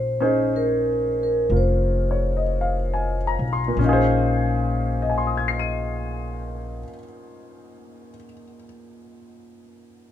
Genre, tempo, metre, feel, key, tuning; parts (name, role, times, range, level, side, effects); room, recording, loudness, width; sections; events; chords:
jazz ballad; 49-64 BPM; 4/4; swing 69% on 8ths; Bb minor; A4 = 444 Hz
vibraphone with medium mallets; melody; 0.0-6.9 s; Bb4 to F5; -26 LUFS; equal
warm concert grand piano; accompaniment; 0.0-10.1 s; Bb2 to Eb7; -25 LUFS; left 2 dB
upright bass; bass; 0.0-6.8 s; F1 to Cb2; -24 LUFS; left 1 dB
little or no reverb; minimal, uncompressed stereo recording; -20 LUFS; side -11 dB against mid
0.0-3.8 A section; 3.8-8.7 B section
slowing down 0.0-3.8
0.0 Bbm11